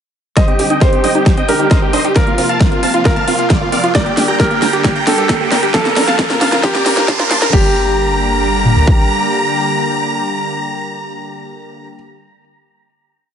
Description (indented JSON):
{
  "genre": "uplifting trance",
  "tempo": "134 BPM",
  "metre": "4/4",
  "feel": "straight",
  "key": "G minor",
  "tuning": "A4 = 440 Hz",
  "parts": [
    { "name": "big supersaw lead", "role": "melody", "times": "0.4-11.9 s", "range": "F4 to C6", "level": "-17 LUFS", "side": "equal", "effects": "sidechain pumping, low-pass filter, dub echo" },
    { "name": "clear baby grand piano", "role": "second line", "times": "0.4-11.9 s", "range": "G4 to Eb5", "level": "-20 LUFS", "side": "right 1 dB", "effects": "dub echo" },
    { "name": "lush unison pad", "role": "sustained chords", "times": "0.4-11.9 s", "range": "C3 to G4", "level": "-21 LUFS", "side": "equal", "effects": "chorus, sidechain pumping" },
    { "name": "tight sequenced synth", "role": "arpeggios", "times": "0.4-7.7 s", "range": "F3 to Bb4", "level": "-21 LUFS", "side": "right 2 dB", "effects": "chorus, sidechain pumping, dub echo" },
    { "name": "big-room dance drum kit", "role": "drums", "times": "0.4-9.0 s", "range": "kick drum, toms", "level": "-13 LUFS", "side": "equal", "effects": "overdrive" },
    { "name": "big-room dance drum kit", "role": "drums", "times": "0.4-7.6 s", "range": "crash cymbal, hi-hat, snare drum", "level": "-19 LUFS", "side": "equal", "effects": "overdrive, sidechain pumping on hats, sidechain pumping on cymbals" },
    { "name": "riser", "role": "sound effects", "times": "2.7-7.5 s", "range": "none", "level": "-23 LUFS", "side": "right 4 dB", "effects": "none" },
    { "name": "tight sequencer bass", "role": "bass", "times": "0.6-8.8 s", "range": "F1 to Bb2", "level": "-24 LUFS", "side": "equal", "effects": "none" }
  ],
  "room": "moderate lush hall reverb, RT60 1.9 s, digital ambience",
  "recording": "high-pass filter, nothing above 10.9 kHz",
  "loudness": "-11 LUFS",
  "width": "side -8 dB against mid",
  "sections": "0.4-7.5 build; 7.5-11.1 final chord",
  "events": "build-up 0.4-7.5; drum fill 0.4-7.5; filter sweep on synth arpeggio sound 0.4-7.5; filter sweep 0.4-7.5; riser 2.7-7.5",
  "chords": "0.4 Cmadd9; 2.2 Fsus4; 3.9 Gm; 5.7 Bb; 7.5 Gm"
}